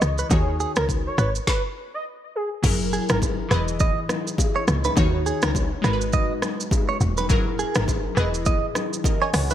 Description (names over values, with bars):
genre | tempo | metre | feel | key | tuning
afrobeats | 103 BPM | 4/4 | swing 58% on 16ths | G# minor | A4 = 440 Hz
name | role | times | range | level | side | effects
warm velvety synth lead | melody | 0.0-2.5 s | G#4 to D#5 | -29 LUFS | equal | chorus, ping-pong delay
glassy digital keys | accompaniment | 0.0-9.5 s | D#3 to G#5 | -28 LUFS | left 1 dB | chorus
woody log drum bass | bass | 0.0-9.5 s | E1 to D#2 | -24 LUFS | equal | none
afro-pop drum kit | drums | 0.0-9.5 s | crash cymbal, hi-hat, kick drum, rim click, shaker, snare drum | -24 LUFS | equal | none
direct-recorded clean electric guitar | riff | 0.2-9.5 s | G#4 to D#5 | -28 LUFS | right 5 dB | analog chorus, ping-pong delay
congas and bongos | percussion | 2.6-9.5 s | none | -31 LUFS | left 4 dB | none
room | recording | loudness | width
light reverb | bright 1980s-style digital production | -20 LUFS | side -11 dB against mid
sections
0.0-2.6 A section; 2.6-9.5 B section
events
stop 1.5-2.6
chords
0.3 D#m7; 1.2 G#m; 2.6 F#9; 3.5 Emaj7; 5.0 D#m7; 5.8 G#m7; 7.3 F#9; 8.2 Emaj7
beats
| 0.31 0.89 1.47 2.06 | 2.64 3.22 3.80 4.38 | 4.97 5.55 6.13 6.72 | 7.30 7.88 8.46 9.05